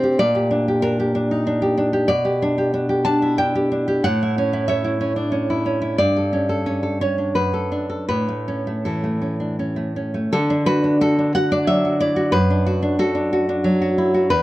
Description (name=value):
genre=romantic piece for solo classical guitar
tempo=78-96 BPM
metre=3/4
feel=rubato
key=D major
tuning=A4 = 441 Hz
part: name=nylon-string guitar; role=solo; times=0.0-14.4 s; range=E2 to A5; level=-17 LUFS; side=equal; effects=none
room=little or no reverb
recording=dry, close 1970s-style studio recording, lossy compression artefacts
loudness=-18 LUFS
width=side -16 dB against mid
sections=0.0-10.3 A section; 10.3-14.4 B section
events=none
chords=0.2 Gm/Bb; 2.1 G/B; 4.0 A; 6.0 A7/G; 7.4 D/F#; 8.1 A; 10.3 D; 12.3 D/F#